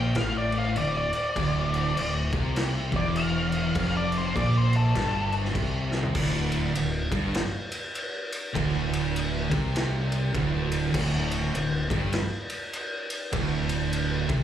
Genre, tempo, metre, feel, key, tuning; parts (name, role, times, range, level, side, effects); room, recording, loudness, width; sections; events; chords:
stoner and doom metal; 100 BPM; 4/4; swing 61% on 8ths; D minor; A4 = 441 Hz
octave-fuzz lead guitar; melody; 0.0-5.3 s; A4 to G5; -30 LUFS; left 2 dB; distortion, slapback echo, tape echo
heavy high-gain guitar; riff; 0.0-14.4 s; D2 to C3; -34 LUFS; equal; distortion
thick fuzz guitar; riff; 0.0-14.4 s; D2 to C3; -30 LUFS; left 5 dB; distortion, slapback echo
thick fuzz guitar; riff; 0.0-14.4 s; D2 to C3; -31 LUFS; right 8 dB; distortion
growling fingered electric bass; bass; 0.0-14.4 s; D1 to C2; -30 LUFS; equal; overdrive
raw garage drum kit; drums; 0.1-14.4 s; crash cymbal, kick drum, ride cymbal, snare drum, toms; -30 LUFS; equal
light reverb; live gig heard through the venue's PA, club reverb; -24 LUFS; side -10 dB against mid
0.0-6.2 A section; 6.2-14.4 B section
lead electric guitar solo 0.0-6.2; drum fill 5.9
0.0 Dm; 6.2 N.C.